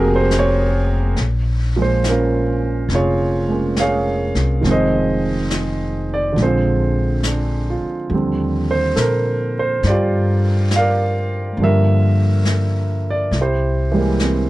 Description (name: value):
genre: jazz ballad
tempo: 69 BPM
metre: 4/4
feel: swing 68% on 8ths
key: unclear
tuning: A4 = 441 Hz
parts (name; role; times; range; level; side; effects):
- warm grand piano; accompaniment; 0.0-14.5 s; Bb2 to F5; -18 LUFS; right 2 dB; none
- warm symphonic string section; sustained chords; 0.0-1.1 s; Bb3 to Bb4; -32 LUFS; left 6 dB; none
- upright bass; bass; 0.0-14.5 s; F1 to Bb2; -19 LUFS; left 1 dB; none
- vintage brush drum kit; drums; 0.3-14.5 s; brushed snare drum, hi-hat, snare drum; -28 LUFS; left 1 dB; none
room: little or no reverb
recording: none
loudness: -15 LUFS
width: side -17 dB against mid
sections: 0.0-1.2 A section; 1.2-14.5 B section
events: none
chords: 0.0 Bbm7; 4.6 Fm7; 6.4 Bb9; 8.1 Ebmaj13; 11.6 Gm7; 13.3 C7b13